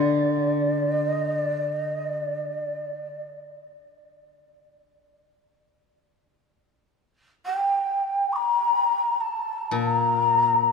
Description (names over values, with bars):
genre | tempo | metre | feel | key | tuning
japanese traditional, Japanese chamber music | free time | none | none | unclear | A4 = 442 Hz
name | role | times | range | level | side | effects
breathy mellow shakuhachi | melody | 0.0-3.4, 7.5-10.7 s | D5 to D6 | -23 LUFS | left 1 dB | none
koto | accompaniment | 0.0-2.5, 9.7-10.7 s | Bb2 to G3 | -26 LUFS | left 3 dB | none
room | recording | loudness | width
wet cathedral reverb, RT60 4.3 s | minimal, uncompressed stereo recording | -22 LUFS | side -4 dB against mid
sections
0.0-6.0 A section; 6.0-10.7 A section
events
none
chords
none